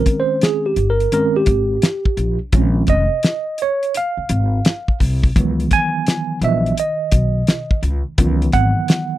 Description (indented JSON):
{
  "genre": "hip hop, jazz-hop",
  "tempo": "85 BPM",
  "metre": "4/4",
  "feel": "swing 64% on 16ths",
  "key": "unclear",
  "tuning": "A4 = 440 Hz",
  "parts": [
    { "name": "mellow tine electric piano", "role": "accompaniment", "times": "0.0-9.2 s", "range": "Eb3 to Ab5", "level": "-19 LUFS", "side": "right 2 dB", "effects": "medium stereo tremolo" },
    { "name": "cloth-damped thuddy drum kit", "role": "drums", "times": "0.1-9.1 s", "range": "hi-hat, kick drum, snare drum", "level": "-16 LUFS", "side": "left 1 dB", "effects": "none" },
    { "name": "upright bass", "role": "bass", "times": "0.8-8.7 s", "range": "F1 to Db2", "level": "-19 LUFS", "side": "left 1 dB", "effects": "none" }
  ],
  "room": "light reverb",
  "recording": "dry, close 1970s-style studio recording",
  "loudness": "-15 LUFS",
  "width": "side -14 dB against mid",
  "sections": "0.0-9.2 A section",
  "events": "tine electric piano solo 0.0-9.2",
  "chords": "0.0 Bbm11; 5.4 Dbm11"
}